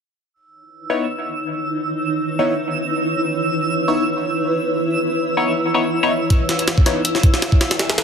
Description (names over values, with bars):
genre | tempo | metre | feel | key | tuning
drum and bass, jungle | 161 BPM | 4/4 | swing 54% on 16ths | C# minor | A4 = 441 Hz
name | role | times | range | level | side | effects
granular cloud pad | sustained chords | 1.0-8.0 s | D#4 to E5 | -22 LUFS | equal | built-in reverb, vintage 12-bit sampler grit
twinkling granular texture | texture | 0.8-8.0 s | E6 | -26 LUFS | right 3 dB | built-in reverb
band-passed chord stab | stabs | 0.9-7.0 s | B3 to C#5 | -21 LUFS | left 2 dB | phaser, dub echo
jungle sampler-style drum kit | drums | 6.3-8.0 s | hi-hat, kick drum, snare drum | -15 LUFS | equal | none
room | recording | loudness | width
moderate plate reverb, RT60 1.6 s, digital ambience | dense, heavily limited modern master | -17 LUFS | side -6 dB against mid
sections
0.3-8.0 A section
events
filter sweep on ambient pad 0.3-8.0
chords
0.3 C#m9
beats
| 0.34 0.71 1.08 1.46 | 1.83 2.20 2.58 2.95 | 3.32 3.69 4.07 4.44 | 4.81 5.18 5.56 5.93 | 6.30 6.67 7.05 7.42 | 7.79